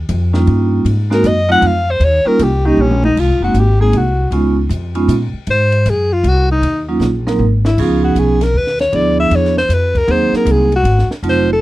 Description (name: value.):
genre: jazz, small-group swing and bop.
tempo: 156 BPM.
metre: 3/4.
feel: swing 65% on 8ths.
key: Ab mixolydian.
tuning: A4 = 440 Hz.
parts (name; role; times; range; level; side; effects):
upright bass; bass; 0.0-11.6 s; F1 to Bb2; -15 LUFS; equal; none.
compact cocktail drum kit; drums; 0.1-11.4 s; crash cymbal, hi-hat, kick drum, ride cymbal, snare drum, toms; -26 LUFS; equal; none.
vibraphone with medium hard mallets; accompaniment; 0.3-11.5 s; F3 to Bb4; -16 LUFS; right 3 dB; none.
breathy alto saxophone; melody; 1.1-11.6 s; Db4 to Gb5; -15 LUFS; left 1 dB; none.
room: little or no reverb.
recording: dry, close 1970s-style studio recording.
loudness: -11 LUFS.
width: side -16 dB against mid.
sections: 0.0-3.2 A section; 3.2-11.6 A section.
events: alto saxophone solo 0.0-11.6; drum fill 2.8-3.2, 7.0-7.8.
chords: 0.0 Eb7; 0.9 Ab7; 1.6 F5; 2.0 Eb7; 3.2 Ab7; 4.3 Db7; 5.5 Ab7; 6.6 Ebm7; 7.4 E/G#; 7.8 Db7; 8.9 Ddim7; 10.1 Ab7.